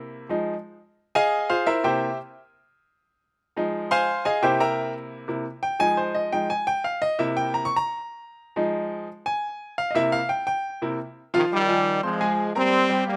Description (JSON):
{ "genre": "latin", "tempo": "174 BPM", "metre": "4/4", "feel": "straight", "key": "F minor", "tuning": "A4 = 440 Hz", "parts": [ { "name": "bright baby grand piano", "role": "accompaniment", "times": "0.0-13.2 s", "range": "C3 to Db6", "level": "-25 LUFS", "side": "equal", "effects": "none" }, { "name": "brilliant trombone section", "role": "melody", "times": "11.3-13.2 s", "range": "C3 to C4", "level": "-23 LUFS", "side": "equal", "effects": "slapback echo" } ], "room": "little or no reverb", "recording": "recorded outdoors, with no room sound", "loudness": "-25 LUFS", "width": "mono", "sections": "0.0-11.3 A section; 11.3-13.2 B section", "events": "grand piano solo 0.0-11.3", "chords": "0.3 Fm7; 1.7 C7; 3.1 Fm7; 4.4 C7; 5.8 Fm7; 7.2 C7; 8.6 Fm7; 10.0 C7; 11.3 Fm7" }